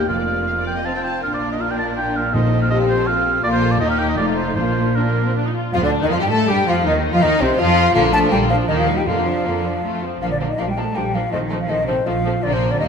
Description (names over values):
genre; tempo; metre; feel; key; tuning
quick classical-period movement for symphony orchestra; 162 BPM; 3/4; rubato; Bb major; A4 = 439 Hz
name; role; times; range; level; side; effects
rich studio violin section; melody; 0.0-12.9 s; Bb3 to A5; -28 LUFS; left 5 dB; none
clear studio violin section; second line; 0.0-12.9 s; A3 to A4; -26 LUFS; left 2 dB; none
warm oboe; second line; 0.0-5.3 s; Bb4 to A5; -22 LUFS; right 2 dB; none
rich studio viola section; accompaniment; 0.0-12.9 s; C3 to F4; -25 LUFS; equal; none
mellow French horn section; sustained chords; 0.0-12.8 s; C4 to A4; -26 LUFS; left 2 dB; none
rich studio cello section; bass; 0.0-12.9 s; Eb2 to A3; -25 LUFS; right 1 dB; none
rich studio double bass section; bass; 0.0-12.9 s; F1 to A2; -24 LUFS; right 3 dB; none
timpani; percussion; 2.3-5.1, 8.0-11.8 s; F2 to Bb2; -27 LUFS; left 1 dB; none
mellow silver concert flute; second line; 5.7-12.8 s; C5 to A5; -21 LUFS; left 2 dB; none
room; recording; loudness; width
moderate scoring stage reverb, RT60 2.0 s; minimal, uncompressed stereo recording; -16 LUFS; side -6 dB against mid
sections
0.0-5.7 A section; 5.7-12.9 B section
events
none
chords
0.1 Bb/F; 0.9 F; 1.2 Bb; 2.3 F7/Bb; 3.4 Bb5; 3.8 Eb; 4.2 F7; 4.6 Bb; 5.7 F13/D; 6.9 F5/Eb; 8.0 Bb; 8.7 Eb; 9.1 Bb/F; 9.8 F; 10.2 Bb; 11.3 F7/Bb; 12.4 Bb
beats
| 0.09 0.47 0.85 | 1.23 1.61 1.98 | 2.34 2.71 3.08 | 3.44 3.81 4.18 | 4.57 4.96 5.35 | 5.74 6.11 6.49 | 6.85 7.22 7.59 | 7.95 8.31 8.69 | 9.06 9.45 9.84 | 10.22 10.59 10.96 | 11.33 11.70 12.06 | 12.43 12.79